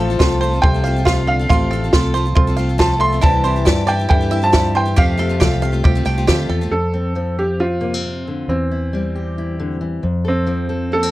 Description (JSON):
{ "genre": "indie folk with a building arrangement", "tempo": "137 BPM", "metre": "4/4", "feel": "straight", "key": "F major", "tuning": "A4 = 441 Hz", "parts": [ { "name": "bright upright piano", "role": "melody", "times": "0.0-11.1 s", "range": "C4 to C6", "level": "-21 LUFS", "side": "right 1 dB", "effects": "none" }, { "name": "clear trombone", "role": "second line", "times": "0.0-6.2 s", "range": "C3 to A3", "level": "-25 LUFS", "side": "left 5 dB", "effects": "none" }, { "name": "felt-muted upright piano", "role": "accompaniment", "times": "0.0-6.7 s", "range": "F1 to F5", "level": "-26 LUFS", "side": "right 4 dB", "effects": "none" }, { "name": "picked steel-string acoustic guitar", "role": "accompaniment", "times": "0.0-6.7 s", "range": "F2 to D5", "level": "-25 LUFS", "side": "left 5 dB", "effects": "none" }, { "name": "bluegrass banjo", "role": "arpeggios", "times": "0.0-6.7 s", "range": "E4 to G5", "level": "-25 LUFS", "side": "right 6 dB", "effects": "none" }, { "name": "fingered electric bass", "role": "bass", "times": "0.0-11.1 s", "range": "A1 to G2", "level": "-20 LUFS", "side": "equal", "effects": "none" }, { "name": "compact cocktail drum kit", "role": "drums", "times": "0.2-6.4 s", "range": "kick drum, snare drum", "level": "-15 LUFS", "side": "equal", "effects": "none" }, { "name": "fingerpicked steel-string acoustic guitar", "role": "accompaniment", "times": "6.7-11.1 s", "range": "F2 to A4", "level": "-24 LUFS", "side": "left 3 dB", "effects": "none" } ], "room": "light reverb", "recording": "none", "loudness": "-15 LUFS", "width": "side -16 dB against mid", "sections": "0.0-6.7 A section; 6.7-11.1 B section", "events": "felt piano fill 6.1-6.7", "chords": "0.0 F/A; 3.2 Cadd9; 5.0 Fadd9; 6.7 F; 8.5 C/E; 10.0 F", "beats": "0.19 0.62 1.06 | 1.49 1.93 2.37 2.80 | 3.23 3.67 4.11 4.54 | 4.98 5.41 5.85 6.29 | 6.73 7.17 7.61 8.05 | 8.49 8.93 9.37 9.81 | 10.25 10.69" }